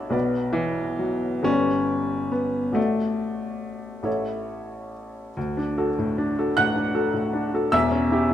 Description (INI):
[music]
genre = classical, romantic character piece for solo piano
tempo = 43-52 BPM (dotted quarters)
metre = 6/8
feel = rubato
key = D major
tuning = A4 = 439 Hz
[part]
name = clear upright piano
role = solo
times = 0.0-8.3 s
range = E1 to F#6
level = -22 LUFS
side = left 1 dB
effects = none
[sound]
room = wet large studio reverb, RT60 1.2 s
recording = dark, warm production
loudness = -22 LUFS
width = side -11 dB against mid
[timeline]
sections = 0.0-5.4 A section; 5.4-8.3 B section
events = none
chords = 0.1 Bm; 1.5 G; 2.8 D/A; 4.1 A; 5.4 D; 7.7 C#dim/E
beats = | 0.13 1.47 | 2.76 4.06 | 5.36 6.56 | 7.73